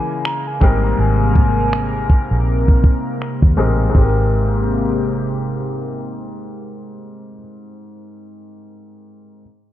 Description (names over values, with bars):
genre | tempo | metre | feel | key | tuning
contemporary R&B | 81 BPM | 4/4 | swing 58% on 16ths | Ab major | A4 = 444 Hz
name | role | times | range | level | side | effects
hollow clarinet-like synth lead | melody | 0.0-3.2 s | G5 to Bb5 | -24 LUFS | right 1 dB | chorus, ping-pong delay
felt-muted upright piano | accompaniment | 0.0-9.4 s | Ab2 to Bb4 | -24 LUFS | left 3 dB | none
chorused pulse-width pad | sustained chords | 0.0-7.3 s | C3 to Bb4 | -23 LUFS | left 1 dB | none
trap drum kit | drums | 0.3-4.1 s | crash cymbal, finger snaps, kick drum | -12 LUFS | equal | none
vintage muted fingered electric bass | bass | 0.6-7.3 s | Ab1 to Eb2 | -18 LUFS | equal | none
room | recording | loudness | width
light reverb, digital ambience | dark, warm production, low-pass filter | -14 LUFS | side -13 dB against mid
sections
0.0-3.9 A section; 3.9-6.9 B section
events
filter sweep 0.0-3.9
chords
0.0 Dbm6; 0.6 Abmaj9